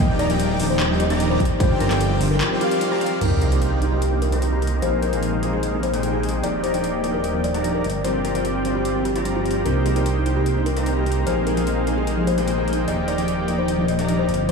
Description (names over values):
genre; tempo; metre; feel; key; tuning
future bass; 149 BPM; 4/4; half-time; C minor; A4 = 440 Hz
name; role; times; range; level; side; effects
buzzing kalimba; melody; 0.0-14.5 s; F4 to Eb5; -25 LUFS; left 3 dB; sidechain pumping, diffuse ambient delay
soft round pluck; accompaniment; 0.0-14.5 s; F3 to Ab4; -27 LUFS; right 1 dB; ensemble chorus, sidechain pumping, tape echo
warm studio string section; sustained chords; 0.0-14.5 s; Bb2 to F4; -31 LUFS; left 2 dB; none
airy dreamy lead; arpeggios; 0.0-3.2 s; F5 to Bb5; -34 LUFS; equal; chorus, sidechain pumping
supersaw chords; riff; 0.0-14.5 s; Bb3 to Bb5; -26 LUFS; equal; sidechain pumping, low-pass filter, tape echo
wide detuned saw bass; bass; 0.0-14.5 s; Eb1 to C2; -23 LUFS; right 1 dB; chorus, sidechain pumping
dubstep drum kit; drums; 0.2-14.5 s; crash cymbal, handclaps, hi-hat; -32 LUFS; left 1 dB; none
electronic kick drum; drums; 1.4-1.7 s; none; -19 LUFS; right 1 dB; none
sub drop; sound effects; 3.2-4.8 s; none; -26 LUFS; right 2 dB; none
room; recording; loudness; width
wet huge ambient reverb, RT60 8.6 s; dreamy mix soaked in reverb, studio reverb; -18 LUFS; side -4 dB against mid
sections
0.0-3.2 A section; 3.2-14.5 B section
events
drop 0.0-3.2; impact 3.2-4.8; filter sweep on supersaw synth 3.2-14.5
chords
0.0 Ebmaj7; 1.4 G7sus4; 3.2 Cm7; 4.8 Bb9sus4; 6.4 Ebmaj7; 7.8 G7sus4; 9.7 Cm7; 11.3 Bb9sus4; 12.9 Ebmaj7